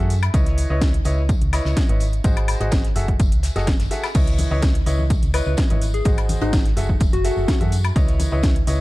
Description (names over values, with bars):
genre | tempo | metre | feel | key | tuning
piano house | 126 BPM | 4/4 | straight | C# minor | A4 = 440 Hz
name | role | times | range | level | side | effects
clear upright piano | riff | 0.0-8.8 s | E4 to E5 | -28 LUFS | equal | sidechain pumping, tape echo
solid FM bass | bass | 0.0-8.8 s | F#1 to F#2 | -21 LUFS | equal | sidechain pumping
damped 70s drum kit | drums | 0.1-8.8 s | hi-hat, snare drum, tambourine | -39 LUFS | left 3 dB | high-pass filter on hats, high-pass filter on snare, high-pass filter on perc, high-pass filter on room
house drum kit | drums | 0.1-8.8 s | crash cymbal, hi-hat, snare drum, woodblock | -28 LUFS | left 1 dB | overdrive
electronic kick drum | drums | 0.3-8.5 s | none | -19 LUFS | equal | overdrive
tambourine and congas | percussion | 4.1-8.8 s | none | -33 LUFS | left 1 dB | none
soft struck synth lead | melody | 5.3-7.6 s | D#4 to B4 | -28 LUFS | left 3 dB | chorus, tape echo
room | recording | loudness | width
studio ambience | dark, warm production | -17 LUFS | side -19 dB against mid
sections
0.0-8.8 A section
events
none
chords
0.3 C#m9; 2.2 G#7; 3.0 F#m9; 4.1 C#m9; 6.1 G#7; 6.8 F#m9; 8.0 C#m9